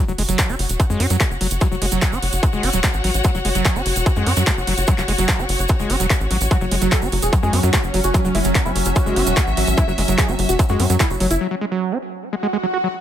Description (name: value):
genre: psychedelic trance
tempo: 147 BPM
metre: 4/4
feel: straight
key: unclear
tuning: A4 = 440 Hz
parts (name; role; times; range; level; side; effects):
- overdriven acid bass; riff; 0.0-12.9 s; F#3 to F#4; -25 LUFS; moving between left 3 dB and right 8 dB; auto-pan, sidechain pumping, tape echo
- clear studio string section; texture; 0.0-11.4 s; F#4 to F#5; -26 LUFS; left 3 dB; sidechain pumping
- tight sequencer bass; bass; 0.1-11.4 s; E1 to F#2; -21 LUFS; equal; none
- egg shaker; percussion; 0.1-11.4 s; none; -30 LUFS; right 6 dB; none
- big-room dance drum kit; drums; 0.2-11.4 s; handclaps, hi-hat; -24 LUFS; right 1 dB; none
- electronic kick drum; drums; 0.4-11.1 s; none; -18 LUFS; equal; distortion, overdrive
- wide unison lead; melody; 6.5-11.4 s; F#3 to A4; -24 LUFS; equal; phaser, sidechain pumping, tape echo
- evolving wavetable pad; sustained chords; 7.3-11.4 s; F#3 to C#4; -27 LUFS; right 1 dB; phaser, built-in reverb, sidechain pumping
- swell; sound effects; 12.3-13.0 s; none; -22 LUFS; equal; none
room: light reverb, digital ambience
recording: none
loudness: -16 LUFS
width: side -10 dB against mid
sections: 0.0-13.0 A section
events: break 11.4-13.0; swell 12.3-13.0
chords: 0.0 F#5